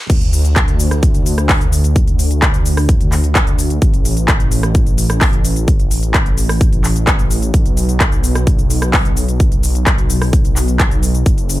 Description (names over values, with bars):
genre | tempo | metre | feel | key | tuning
EDM, festival progressive house | 129 BPM | 4/4 | straight | D major | A4 = 442 Hz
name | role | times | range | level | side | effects
wide detuned saw bass | bass | 0.1-11.6 s | F#1 to D2 | -16 LUFS | equal | chorus, sidechain pumping
electronic kick drum | drums | 0.1-11.4 s | none | -14 LUFS | equal | none
pop drum kit | drums | 0.1-11.6 s | crash cymbal, handclaps, hi-hat, rim click, shaker | -19 LUFS | left 1 dB | none
room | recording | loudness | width
little or no reverb | high-pass filter | -12 LUFS | side -16 dB against mid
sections
0.1-11.6 A section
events
drop 0.1-11.6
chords
none